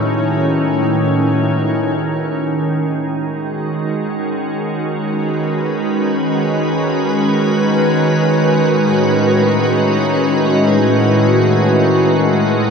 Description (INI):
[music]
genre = ambient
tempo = free time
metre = none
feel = none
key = unclear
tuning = A4 = 440 Hz
[part]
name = soft additive organ-like pad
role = sustained chords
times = 0.0-12.7 s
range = A2 to B4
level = -13 LUFS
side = equal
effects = ensemble chorus, built-in reverb
[part]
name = overdriven tine electric piano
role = arpeggios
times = 0.0-3.3 s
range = F#3 to C#5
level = -30 LUFS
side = left 2 dB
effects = none
[sound]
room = wet lush hall reverb, RT60 3.0 s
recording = dreamy mix soaked in reverb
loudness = -13 LUFS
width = side -6 dB against mid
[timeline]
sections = 0.0-1.9 A section; 1.9-12.7 B section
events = none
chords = 0.0 Aadd9; 1.9 B; 8.6 A6